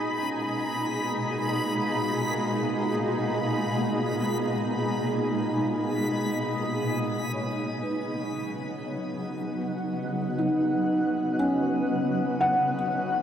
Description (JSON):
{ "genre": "ambient", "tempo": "59 BPM", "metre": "4/4", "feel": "straight", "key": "B major", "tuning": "A4 = 440 Hz", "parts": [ { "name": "shimmering ambient pad", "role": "sustained chords", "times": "0.0-13.2 s", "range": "A#2 to F#5", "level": "-26 LUFS", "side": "equal", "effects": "chorus, built-in reverb, shimmer reverb" }, { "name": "felt-muted upright piano", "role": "arpeggios", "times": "0.0-13.2 s", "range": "C#4 to F#5", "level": "-29 LUFS", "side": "equal", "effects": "tape echo, shimmer reverb" }, { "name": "backwards swelling texture", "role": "texture", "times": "0.0-6.8 s", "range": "B5", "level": "-34 LUFS", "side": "left 1 dB", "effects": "built-in reverb, shimmer reverb" } ], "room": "wet huge ambient reverb, RT60 9.5 s", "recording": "none", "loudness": "-25 LUFS", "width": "side -9 dB against mid", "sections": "0.0-6.8 A section; 6.8-13.2 B section", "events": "filter sweep on ambient pad 6.8-13.2", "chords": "0.0 G#madd9; 6.8 B69", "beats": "0.71 1.73 | 2.75 3.77 4.78 5.80 | 6.82 7.83 8.85 9.87 | 10.88 11.90 12.92" }